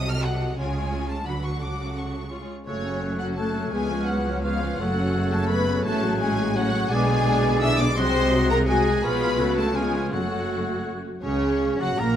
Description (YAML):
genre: classical, dramatic, fast romantic movement for symphony orchestra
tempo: 155-180 BPM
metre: 3/4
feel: straight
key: F# minor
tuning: A4 = 439 Hz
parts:
  - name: warm symphonic violin section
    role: melody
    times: 0.0-12.2 s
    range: C#5 to E#6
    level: -31 LUFS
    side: left 3 dB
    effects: none
  - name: warm symphonic violin section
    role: second line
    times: 0.0-12.2 s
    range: C#4 to F#5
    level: -32 LUFS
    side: left 2 dB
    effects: none
  - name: rich symphonic viola section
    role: accompaniment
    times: 0.0-12.2 s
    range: C#3 to G#4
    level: -30 LUFS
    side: right 1 dB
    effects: none
  - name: rich symphonic cello section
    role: bass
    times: 0.0-12.2 s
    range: C#2 to D3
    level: -29 LUFS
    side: right 1 dB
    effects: none
  - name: warm symphonic double bass section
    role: bass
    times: 0.0-12.2 s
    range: F#1 to D2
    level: -29 LUFS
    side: right 2 dB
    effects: none
  - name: bright small flute group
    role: second line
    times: 2.7-12.2 s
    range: C#5 to F#6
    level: -35 LUFS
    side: left 1 dB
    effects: none
  - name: mellow clarinet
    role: second line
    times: 2.7-12.2 s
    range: C#4 to B4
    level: -34 LUFS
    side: equal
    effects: none
  - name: warm oboe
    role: second line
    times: 2.7-12.2 s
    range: C#4 to D#5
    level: -34 LUFS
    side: right 1 dB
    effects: none
  - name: dark French horn section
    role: sustained chords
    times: 2.7-12.2 s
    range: C#3 to E4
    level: -28 LUFS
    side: left 4 dB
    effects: none
  - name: dark trombone section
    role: sustained chords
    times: 2.7-12.2 s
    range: C#3 to B3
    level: -32 LUFS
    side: right 4 dB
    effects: none
room: moderate scoring stage reverb, RT60 2.0 s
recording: none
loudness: -21 LUFS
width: side -10 dB against mid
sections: 0.0-2.7 A section; 2.7-11.2 B section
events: none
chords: 0.0 Cdim7; 0.6 C#; 1.3 Bm/D; 1.6 F#m/C#; 2.3 C#; 2.7 F#m; 3.7 C#7; 4.8 F#m; 5.9 F#m/A; 6.9 G#dim/B; 8.0 G#7/B#; 9.0 C#7/B; 9.4 F#m/C#; 9.8 C#7; 10.1 F#m; 11.2 F#/C#